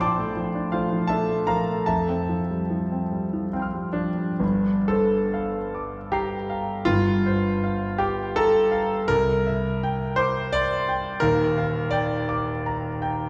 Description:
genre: classical, impressionist solo piano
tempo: 59-89 BPM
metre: 3/4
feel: rubato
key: unclear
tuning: A4 = 439 Hz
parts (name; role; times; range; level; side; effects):
- warm concert grand piano; solo; 0.0-13.3 s; Eb1 to C7; -24 LUFS; equal; none
room: wet concert hall reverb, RT60 1.9 s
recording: recorded in a church or concert hall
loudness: -24 LUFS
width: mono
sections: 0.0-4.4 A section; 4.4-13.3 B section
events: none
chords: 0.0 Bbmaj7; 1.9 Fadd9; 4.4 Bb69/G; 9.1 Cadd9; 11.2 Ebmaj9

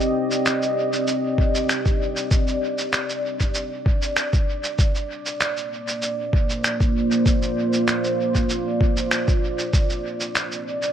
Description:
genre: ambient dub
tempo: 97 BPM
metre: 4/4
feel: straight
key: C minor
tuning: A4 = 440 Hz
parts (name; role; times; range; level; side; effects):
- deep dark ambient pad; sustained chords; 0.0-10.9 s; Bb3 to Eb5; -23 LUFS; right 1 dB; chorus, built-in reverb
- electronic shaker and finger snaps; drums; 0.0-10.9 s; none; -26 LUFS; right 1 dB; dub echo
- electronic kick drum; drums; 1.4-9.9 s; none; -20 LUFS; equal; none
room: light reverb, digital ambience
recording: echo-heavy mix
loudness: -20 LUFS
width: side -10 dB against mid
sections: 0.0-10.9 A section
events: none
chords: 0.0 Cm; 4.8 Bb6; 9.7 Cm

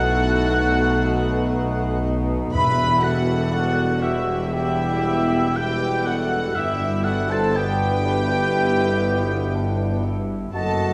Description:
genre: classical, slow romantic movement for symphony orchestra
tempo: 60 BPM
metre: 4/4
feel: rubato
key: E minor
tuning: A4 = 440 Hz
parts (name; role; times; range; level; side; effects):
- rich symphonic violin section; melody; 0.0-10.9 s; E5 to B5; -36 LUFS; equal; none
- silver concert flute; second line; 0.0-10.9 s; G4 to E5; -32 LUFS; equal; none
- warm oboe; second line; 0.0-10.9 s; E5 to B5; -30 LUFS; equal; none
- warm symphonic violin section; second line; 0.0-10.9 s; E5 to B5; -35 LUFS; equal; none
- mellow bassoon; accompaniment; 0.0-10.9 s; B3 to G4; -32 LUFS; equal; none
- warm studio viola section; accompaniment; 0.0-10.9 s; E4 to B4; -32 LUFS; equal; none
- clear trombone section; sustained chords; 0.0-10.9 s; B2 to A3; -34 LUFS; equal; none
- mellow French horn section; sustained chords; 0.0-10.9 s; B3 to F#4; -34 LUFS; equal; none
- dark trumpet section; stabs; 0.0-10.9 s; E5 to B5; -32 LUFS; equal; none
- dark symphonic double bass section; bass; 0.0-10.9 s; E1 to B1; -30 LUFS; equal; none
- rich symphonic cello section; bass; 0.0-10.9 s; E2 to B2; -30 LUFS; equal; none
- warm tuba; bass; 0.0-10.9 s; E1 to B1; -30 LUFS; equal; none
- timpani; percussion; 2.5-4.0 s; E2; -31 LUFS; equal; none
room: wet recital hall reverb, RT60 1.7 s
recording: heard from further back in the room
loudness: -21 LUFS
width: mono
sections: 0.0-10.9 A section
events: none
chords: 0.0 B7; 2.5 Em; 6.5 Em/G

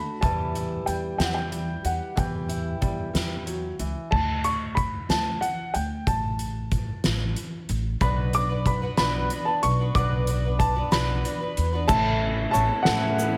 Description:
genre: indie folk with a building arrangement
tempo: 62 BPM (dotted quarters)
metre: 6/8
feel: straight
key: A mixolydian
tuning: A4 = 440 Hz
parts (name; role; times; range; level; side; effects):
- warm upright piano; melody; 0.0-13.4 s; F#5 to D6; -30 LUFS; equal; none
- fingerpicked steel-string acoustic guitar; accompaniment; 0.0-4.1 s; D3 to B4; -36 LUFS; equal; none
- upright bass; bass; 0.0-13.4 s; A1 to E2; -30 LUFS; equal; none
- soft-mallet drum kit; drums; 0.2-13.3 s; crash cymbal, hi-hat, kick drum, ride cymbal, snare drum; -31 LUFS; equal; none
- picked twelve-string acoustic guitar; accompaniment; 8.0-13.4 s; A2 to B4; -33 LUFS; equal; none
- felt-muted upright piano; accompaniment; 11.9-13.4 s; A1 to F#5; -36 LUFS; equal; none
- warm symphonic string section; sustained chords; 11.9-13.4 s; A3 to E4; -36 LUFS; equal; none
- ukulele; arpeggios; 11.9-13.4 s; A4 to C#5; -34 LUFS; equal; none
- egg shaker; percussion; 11.9-13.3 s; none; -39 LUFS; equal; none
room: light reverb, small room ambience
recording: none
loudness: -25 LUFS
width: mono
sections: 0.0-4.1 A section; 4.1-11.9 B section; 11.9-13.4 C section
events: none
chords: 0.2 Em; 4.1 D5; 6.1 N.C.; 8.0 Bm; 11.9 A

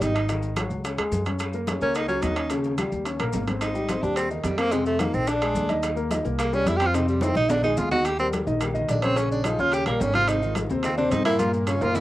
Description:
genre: Afro-Cuban jazz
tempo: 216 BPM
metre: 4/4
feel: straight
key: Eb major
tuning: A4 = 440 Hz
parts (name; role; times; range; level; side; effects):
- clear tenor saxophone; melody; 0.0-12.0 s; Eb3 to G4; -24 LUFS; right 1 dB; cassette tape
- warm concert grand piano; accompaniment; 0.0-12.0 s; Bb2 to Eb5; -27 LUFS; left 2 dB; cassette tape
- upright bass; bass; 0.0-12.0 s; Ab1 to G2; -29 LUFS; equal; none
- bongos; percussion; 0.0-12.0 s; none; -37 LUFS; left 3 dB; none
- congas; percussion; 0.0-12.0 s; none; -34 LUFS; left 1 dB; none
- maracas; percussion; 0.0-12.0 s; none; -44 LUFS; left 5 dB; none
- timbales; percussion; 0.0-12.0 s; none; -32 LUFS; right 4 dB; none
- claves; percussion; 0.2-11.8 s; none; -44 LUFS; left 2 dB; none
room: moderate booth ambience, RT60 0.2 s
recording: home recording on cassette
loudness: -22 LUFS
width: side -15 dB against mid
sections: 0.0-8.1 A section; 8.1-12.0 A section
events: tenor saxophone solo 0.0-12.0; drum fill 2.5-3.6, 7.2-8.1, 11.4-12.0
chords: 0.3 Ab5; 0.8 Db5; 1.4 Gb6; 2.5 Eb7; 3.6 Abmaj7; 4.7 F5; 5.3 Bb7; 5.8 Eb5; 6.4 C5; 6.9 F5; 7.5 Bb7; 8.1 Eb; 9.2 Bbm7; 9.7 Eb6; 10.3 Ab6; 11.4 Gm7b5

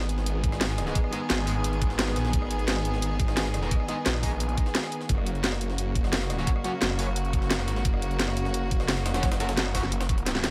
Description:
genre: dark technical drum and bass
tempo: 174 BPM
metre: 4/4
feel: straight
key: G# minor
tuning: A4 = 440 Hz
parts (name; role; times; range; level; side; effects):
- rich chamber string section; sustained chords; 0.0-10.5 s; C#3 to G#4; -35 LUFS; equal; sidechain pumping
- snarling distorted saw bass; bass; 0.0-10.5 s; F#1 to A#1; -31 LUFS; equal; distortion, overdrive
- drum and bass drum kit; drums; 0.0-10.5 s; hi-hat, rim click, snare drum; -31 LUFS; equal; none
- jungle sampler-style drum kit; drums; 0.0-10.5 s; hi-hat, snare drum; -40 LUFS; equal; overdrive, high-pass filter on hats, high-pass filter on snare
- electronic kick drum; drums; 0.4-10.2 s; none; -29 LUFS; equal; none
- distorted electric guitar; stabs; 0.9-1.5, 3.6-4.3, 6.4-7.1, 9.1-9.8 s; F#3 to G#4; -37 LUFS; equal; distortion, delay
room: digital ambience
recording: none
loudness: -27 LUFS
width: mono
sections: 0.0-10.5 A section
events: drum fill 10.3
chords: 0.0 G#m; 5.1 F#

